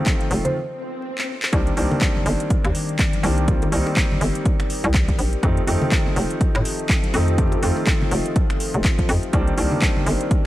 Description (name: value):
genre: deep house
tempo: 123 BPM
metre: 4/4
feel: swing 58% on 16ths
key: C dorian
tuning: A4 = 440 Hz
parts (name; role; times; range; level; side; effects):
- deep dark ambient pad; sustained chords; 0.0-10.5 s; Eb3 to Eb5; -31 LUFS; left 2 dB; chorus, built-in reverb, sidechain pumping
- felt-muted upright piano; stabs; 0.0-10.5 s; Eb3 to G4; -25 LUFS; equal; vintage 12-bit sampler grit, sidechain pumping, tape echo
- electronic kick drum; drums; 0.1-10.4 s; none; -20 LUFS; equal; overdrive
- house drum kit; drums; 0.1-10.4 s; finger snaps, handclaps, hi-hat; -27 LUFS; equal; overdrive
- bongos and congas; percussion; 0.1-10.0 s; none; -29 LUFS; left 1 dB; sidechain pumping on perc
- hollow knocking FM bass; bass; 0.3-10.2 s; F1 to A2; -21 LUFS; equal; sidechain pumping
- buzzing marimba with medium mallets; melody; 0.4-0.8 s; C5; -30 LUFS; right 2 dB; vintage 12-bit sampler grit, analog delay
- swell; sound effects; 0.7-1.5 s; none; -32 LUFS; left 1 dB; none
room: digital ambience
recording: dry, gritty hardware recording, vinyl crackle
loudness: -18 LUFS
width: side -15 dB against mid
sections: 0.0-1.5 A section; 1.5-10.5 A section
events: break 0.6-1.5; swell 0.7-1.5; drum fill 1.2-1.5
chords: 0.0 F7; 1.5 Cm9; 5.4 F7; 9.3 Cm9